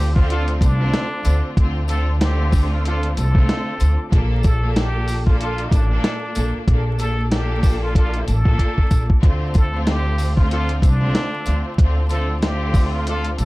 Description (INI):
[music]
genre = hip hop, boom-bap hip-hop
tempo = 94 BPM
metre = 4/4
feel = swing 59% on 16ths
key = D minor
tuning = A4 = 439 Hz
[part]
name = trumpet with plunger mute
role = melody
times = 0.0-13.4 s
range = D4 to A4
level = -28 LUFS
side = equal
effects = high-pass filter, low-pass filter, ping-pong delay
[part]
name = bright studio string section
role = accompaniment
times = 0.0-13.4 s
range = Bb2 to A4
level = -26 LUFS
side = equal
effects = cassette tape, high-pass filter, low-pass filter
[part]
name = mellow tonewheel organ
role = sustained chords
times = 0.0-13.4 s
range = Bb3 to D6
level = -35 LUFS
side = left 1 dB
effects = chorus vibrato, wide subtle chorus, high-pass filter, low-pass filter
[part]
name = upright bass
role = bass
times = 0.0-13.4 s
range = A1 to D2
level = -20 LUFS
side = equal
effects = none
[part]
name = dusty soul sampler-style drum kit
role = drums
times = 0.2-13.4 s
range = hi-hat, kick drum, snare drum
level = -17 LUFS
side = equal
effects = none
[part]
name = warm horn section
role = stabs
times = 0.3-13.3 s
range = D4 to A4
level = -32 LUFS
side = equal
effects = high-pass filter, low-pass filter, ping-pong delay
[part]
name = tambourine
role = percussion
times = 0.6-13.4 s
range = none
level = -40 LUFS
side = left 4 dB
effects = none
[sound]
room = little or no reverb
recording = vinyl crackle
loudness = -16 LUFS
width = side -20 dB against mid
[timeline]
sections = 0.0-13.4 A section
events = drum fill 8.6-9.2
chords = 0.0 Dm7; 4.1 Bbmaj7; 9.2 Dm7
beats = 0.29 0.93 | 1.57 2.21 2.85 3.48 | 4.12 4.76 5.40 6.04 | 6.68 7.32 7.95 8.59 | 9.23 9.87 10.51 11.14 | 11.78 12.42 13.06